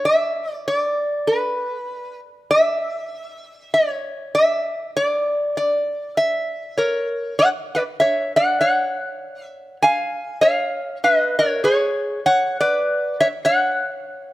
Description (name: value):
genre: hawaiian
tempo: 99 BPM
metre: 4/4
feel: swing 59% on 8ths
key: B harmonic minor from 7.4 s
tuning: A4 = 440 Hz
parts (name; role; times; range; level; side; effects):
- lap resonator guitar; solo; 0.0-14.3 s; G#4 to G#5; -18 LUFS; equal; none
room: light reverb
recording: close, detailed microphones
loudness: -18 LUFS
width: side -16 dB against mid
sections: 0.0-7.4 A section; 7.4-14.3 B section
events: none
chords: 0.0 N.C.; 7.4 Bsus2 (rootless); 9.8 C#7; 12.2 F#5